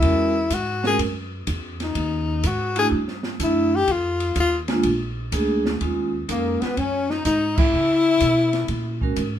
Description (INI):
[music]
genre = jazz, small-group swing and bop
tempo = 125 BPM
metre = 4/4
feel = swing 68% on 8ths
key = unclear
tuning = A4 = 441 Hz
[part]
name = breathy tenor saxophone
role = melody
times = 0.0-9.0 s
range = Bb3 to Ab4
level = -21 LUFS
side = left 4 dB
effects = none
[part]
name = vibraphone with medium hard mallets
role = accompaniment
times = 0.0-9.2 s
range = G#3 to Bb4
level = -23 LUFS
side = right 3 dB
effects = none
[part]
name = upright bass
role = bass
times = 0.0-9.4 s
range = Bb1 to Db3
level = -27 LUFS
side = right 1 dB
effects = none
[part]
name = open jazz drum kit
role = drums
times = 0.0-9.3 s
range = crash cymbal, hi-hat, kick drum, ride cymbal, snare drum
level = -28 LUFS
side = right 1 dB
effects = none
[part]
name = breathy alto saxophone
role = second line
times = 6.3-9.0 s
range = Bb3 to Fb4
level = -27 LUFS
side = right 2 dB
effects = none
[sound]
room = moderate studio reverb, RT60 0.5 s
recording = minimal, uncompressed stereo recording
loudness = -19 LUFS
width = side -10 dB against mid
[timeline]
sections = 0.0-5.8 A section; 5.8-9.4 B section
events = tenor saxophone solo 0.0-5.8; band accent 7.5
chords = 0.0 Eadd9; 2.0 Ebmadd11; 2.9 Em11; 3.9 Ebsus24; 4.8 Bb7; 5.8 Ebm11; 7.7 Dbm7; 8.7 Gbadd9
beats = | 0.03 0.52 1.00 1.48 | 1.96 2.44 2.92 3.40 | 3.88 4.37 4.85 5.33 | 5.81 6.29 6.77 7.25 | 7.73 8.21 8.70 9.18